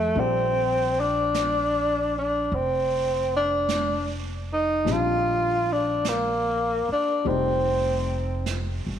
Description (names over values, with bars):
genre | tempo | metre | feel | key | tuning
jazz ballad | 51 BPM | 4/4 | swing 69% on 8ths | Bb major | A4 = 438 Hz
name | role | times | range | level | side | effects
mellow tenor saxophone | melody | 0.0-8.5 s | A3 to F4 | -23 LUFS | equal | none
warm baby grand piano | accompaniment | 0.0-9.0 s | Eb3 to D5 | -32 LUFS | left 10 dB | none
upright bass | bass | 0.0-9.0 s | F1 to F2 | -30 LUFS | equal | none
jazz brush drum kit | drums | 0.2-9.0 s | brushed snare drum, hi-hat, snare drum | -36 LUFS | right 8 dB | none
room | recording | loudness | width
moderate echo chamber reverb, RT60 2.2 s | 1960s-style stereo with parts hard left and right | -22 LUFS | side -9 dB against mid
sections
0.0-9.0 A section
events
none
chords
0.2 Bb69; 7.3 F9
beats
| 0.16 1.34 2.52 3.69 | 4.88 6.06 7.25 8.47